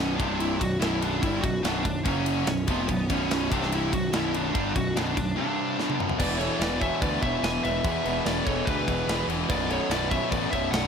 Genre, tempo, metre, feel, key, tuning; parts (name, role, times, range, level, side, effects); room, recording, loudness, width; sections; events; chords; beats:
heavy metal; 145 BPM; 4/4; straight; B minor; A4 = 440 Hz
high-gain lead guitar; melody; 0.0-10.9 s; B3 to G#5; -30 LUFS; equal; distortion
distorted electric guitar; riff; 0.0-10.9 s; B1 to G3; -32 LUFS; left 16 dB; overdrive
distorted electric guitar; riff; 0.0-10.9 s; B1 to G3; -32 LUFS; left 1 dB; overdrive
tight distorted guitar; riff; 0.0-10.9 s; B1 to G3; -32 LUFS; right 14 dB; distortion
fuzz picked electric bass; bass; 0.0-10.9 s; B0 to E2; -31 LUFS; equal; overdrive
tight metal drum kit; drums; 0.2-10.8 s; crash cymbal, kick drum, ride cymbal, snare drum, toms; -30 LUFS; equal
high-gain lead guitar; second line; 6.2-10.9 s; G#4 to E5; -37 LUFS; right 3 dB; distortion
little or no reverb; -24 LUFS; side -6 dB against mid
0.0-6.2 A section; 6.2-10.9 B section
drum fill 5.8-6.2
0.2 C5; 0.6 Bm; 2.1 F#5; 2.5 B5; 3.5 C5; 3.9 Bm; 5.4 C5; 5.8 Bm; 6.2 E; 9.5 B5
0.40 0.81 | 1.23 1.64 2.06 2.47 | 2.89 3.30 3.71 4.13 | 4.54 4.96 5.37 5.78 | 6.20 6.61 7.02 7.44 | 7.85 8.26 8.68 9.09 | 9.50 9.91 10.33 10.74